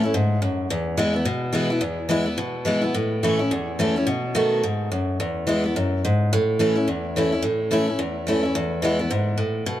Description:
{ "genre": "rock", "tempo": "214 BPM", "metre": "4/4", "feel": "swing 58% on 8ths", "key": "E major", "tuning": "A4 = 440 Hz", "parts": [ { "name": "picked steel-string acoustic guitar", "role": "solo", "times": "0.0-9.8 s", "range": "E2 to F#4", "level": "-20 LUFS", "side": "equal", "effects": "analog delay" } ], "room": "moderate studio ambience, RT60 0.5 s", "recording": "none", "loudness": "-20 LUFS", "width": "side -12 dB against mid", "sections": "0.0-6.3 A section; 6.3-9.8 B section", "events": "none", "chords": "0.0 A; 0.7 E; 2.9 A; 4.1 B7; 5.2 E; 6.3 A; 8.5 E", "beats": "0.13 0.41 | 0.70 0.98 1.26 1.54 | 1.82 2.10 2.38 2.66 | 2.94 3.23 3.51 3.79 | 4.07 4.35 4.63 4.91 | 5.19 5.47 5.75 6.03 | 6.31 6.59 6.87 7.15 | 7.43 7.71 7.99 8.27 | 8.55 8.83 9.11 9.38 | 9.66" }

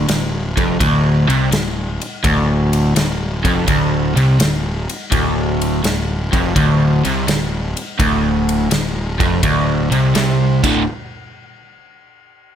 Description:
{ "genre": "blues rock power trio and southern rock", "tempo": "84 BPM", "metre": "4/4", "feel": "swing 68% on 8ths", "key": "D minor", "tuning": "A4 = 443 Hz", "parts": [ { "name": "crunchy overdriven guitar", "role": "riff", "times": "0.0-10.8 s", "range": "D2 to D3", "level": "-16 LUFS", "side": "equal", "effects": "none" }, { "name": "fuzz picked electric bass", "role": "bass", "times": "0.0-10.8 s", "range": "D1 to C2", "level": "-21 LUFS", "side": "equal", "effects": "overdrive" }, { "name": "big rock drum kit", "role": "drums", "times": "0.1-10.7 s", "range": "crash cymbal, kick drum, ride cymbal, snare drum", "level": "-21 LUFS", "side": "equal", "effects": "none" } ], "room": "moderate club ambience, RT60 0.5 s", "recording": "none", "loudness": "-14 LUFS", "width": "side -9 dB against mid", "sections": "0.0-10.9 A section; 10.9-12.6 B section", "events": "none", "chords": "0.0 Dm; 10.5 D5; 10.9 N.C.", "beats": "0.09 0.81 1.52 | 2.24 2.96 3.68 4.40 | 5.12 5.84 6.56 7.28 | 8.00 8.71 9.43 10.15" }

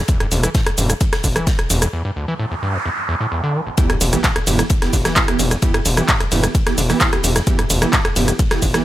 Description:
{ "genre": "driving peak-time techno", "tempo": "130 BPM", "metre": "4/4", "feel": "straight", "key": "E minor", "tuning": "A4 = 440 Hz", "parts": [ { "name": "overdriven acid bass", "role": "riff", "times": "0.0-8.8 s", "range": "E1 to E3", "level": "-24 LUFS", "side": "equal", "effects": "distortion, sidechain pumping, digital delay" }, { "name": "electronic kick drum", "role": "drums", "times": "0.1-8.7 s", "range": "none", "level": "-18 LUFS", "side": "equal", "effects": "none" }, { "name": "huge arena drum kit", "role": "drums", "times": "0.1-8.8 s", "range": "ride cymbal, snare drum", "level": "-32 LUFS", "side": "left 2 dB", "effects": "none" }, { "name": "punchy analog drum machine", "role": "drums", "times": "0.1-8.8 s", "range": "handclaps, hi-hat, ride cymbal, rim click, shaker", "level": "-19 LUFS", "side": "equal", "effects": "sidechain pumping on hats, sidechain pumping on perc, sidechain pumping on cymbals" }, { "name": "gritty driven synth bass", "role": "bass", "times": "0.3-8.8 s", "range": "E1", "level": "-19 LUFS", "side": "equal", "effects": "tube saturation, sidechain pumping" }, { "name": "noise sweep and sub drop", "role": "sound effects", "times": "2.3-5.6 s", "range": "none", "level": "-26 LUFS", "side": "right 2 dB", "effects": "none" }, { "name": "rave stab", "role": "stabs", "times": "3.8-8.8 s", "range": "E3 to G4", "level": "-23 LUFS", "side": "right 4 dB", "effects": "chorus, built-in reverb, cassette tape, sidechain pumping, digital delay" } ], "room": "light reverb", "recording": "none", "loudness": "-15 LUFS", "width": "side -14 dB against mid", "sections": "0.0-3.8 A section; 3.8-8.8 B section", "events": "break 1.9-3.8; noise sweep 2.3-3.8; drop 3.8-8.8; impact 3.8-5.6", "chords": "0.0 N.C.; 3.8 Em", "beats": "| 0.09 0.55 1.01 1.47 | 1.93 2.39 2.85 3.32 | 3.78 4.24 4.70 5.16 | 5.62 6.09 6.55 7.01 | 7.47 7.93 8.39" }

